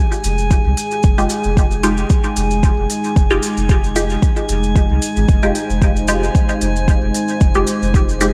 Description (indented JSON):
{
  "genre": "dub techno",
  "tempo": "113 BPM",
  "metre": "4/4",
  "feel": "swing 54% on 16ths",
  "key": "F minor",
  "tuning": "A4 = 440 Hz",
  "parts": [
    { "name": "dark analog pad", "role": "sustained chords", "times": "0.1-8.3 s", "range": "Ab3 to C5", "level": "-25 LUFS", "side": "equal", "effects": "chorus, sidechain pumping" },
    { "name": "drifting glass-harmonics texture", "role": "texture", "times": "0.0-8.3 s", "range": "Ab5", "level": "-29 LUFS", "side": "equal", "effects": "chorus, built-in reverb, sidechain pumping" },
    { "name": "maracas", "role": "percussion", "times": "0.1-8.3 s", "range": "none", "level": "-31 LUFS", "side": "equal", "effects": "none" },
    { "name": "soft dub sub bass", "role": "bass", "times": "0.2-8.3 s", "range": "F1 to C2", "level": "-22 LUFS", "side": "equal", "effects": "sidechain pumping" },
    { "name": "electronic hi-hat", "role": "drums", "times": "0.2-8.3 s", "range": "none", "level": "-31 LUFS", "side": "equal", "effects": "studio reverb" },
    { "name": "electronic kick drum", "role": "drums", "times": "0.5-8.1 s", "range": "none", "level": "-16 LUFS", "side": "equal", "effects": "studio reverb" },
    { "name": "filtered dub chord stab", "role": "stabs", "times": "1.2-8.3 s", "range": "Ab3 to G4", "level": "-23 LUFS", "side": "equal", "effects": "phaser, sidechain pumping, dub echo" }
  ],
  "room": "light reverb",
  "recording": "vinyl crackle",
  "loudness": "-16 LUFS",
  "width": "mono",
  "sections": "0.0-8.3 A section",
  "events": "none",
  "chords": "0.0 Fm9"
}